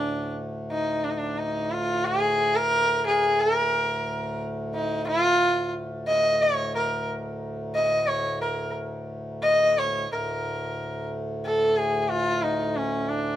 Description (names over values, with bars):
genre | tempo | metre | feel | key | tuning
indian classical | 90 BPM | 5/4 | straight | D raga todi | A4 = 440 Hz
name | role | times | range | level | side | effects
rich sarangi | melody | 0.0-13.4 s | C#4 to Eb5 | -23 LUFS | equal | none
hand-pumped harmonium | drone | 0.0-13.4 s | D2 to A2 | -32 LUFS | equal | none
room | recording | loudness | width
moderate studio reverb, RT60 0.8 s | band playing live in one room | -23 LUFS | side -12 dB against mid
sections
0.0-10.1 A section; 10.1-13.4 A section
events
none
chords
none